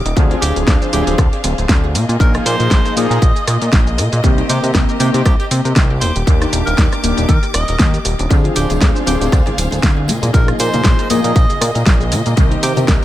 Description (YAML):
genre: nu-disco, nu disco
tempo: 118 BPM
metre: 4/4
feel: swing 55% on 16ths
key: unclear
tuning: A4 = 440 Hz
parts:
  - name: warm symphonic string section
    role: sustained chords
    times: 0.0-13.0 s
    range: Eb3 to D6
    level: -26 LUFS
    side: equal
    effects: sidechain pumping
  - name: wide unison pluck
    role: arpeggios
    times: 0.1-13.0 s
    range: Bb3 to C5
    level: -26 LUFS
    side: left 3 dB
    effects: sidechain pumping, dub echo
  - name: fat analog bass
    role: bass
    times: 0.1-13.0 s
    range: D1 to C3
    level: -17 LUFS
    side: equal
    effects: tube saturation
  - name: pop drum kit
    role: drums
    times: 0.1-13.0 s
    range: hi-hat, rim click, shaker, snare drum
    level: -20 LUFS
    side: equal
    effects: analog delay
  - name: mellow synth brass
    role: accompaniment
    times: 0.2-13.0 s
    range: Eb3 to Ab4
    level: -21 LUFS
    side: left 1 dB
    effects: chorus, analog delay
  - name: electronic kick drum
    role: drums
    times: 0.2-13.0 s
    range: none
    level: -13 LUFS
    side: equal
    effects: none
  - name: bright tenor saxophone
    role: melody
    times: 0.4-12.8 s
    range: G4 to Eb5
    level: -24 LUFS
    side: right 1 dB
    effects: dub echo
  - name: tambourine, congas and bongos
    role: percussion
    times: 8.3-13.0 s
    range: none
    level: -27 LUFS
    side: left 2 dB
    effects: none
room: digital ambience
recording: echo-heavy mix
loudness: -12 LUFS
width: side -14 dB against mid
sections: 0.0-13.0 A section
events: none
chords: 0.2 Dm7b5; 1.9 Bb7sus4; 4.2 Cm7; 6.0 Ebmaj7; 8.3 Dm7b5; 10.1 Bb7sus4; 12.4 Cm7